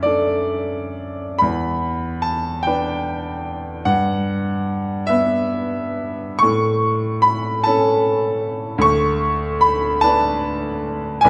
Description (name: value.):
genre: classical, romantic nocturne for solo piano.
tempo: 49 BPM (dotted quarters).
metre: 6/8.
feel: uneven beats, rubato.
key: unclear.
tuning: A4 = 440 Hz.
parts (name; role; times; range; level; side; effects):
bright grand piano; solo; 0.0-11.3 s; B1 to C#6; -20 LUFS; equal; none.
room: wet recital hall reverb, RT60 1.6 s.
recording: none.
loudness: -20 LUFS.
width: mono.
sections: 0.0-11.3 A section.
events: none.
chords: 0.0 D/F#; 1.4 Em7; 3.9 Em/G; 6.4 A; 8.8 D5.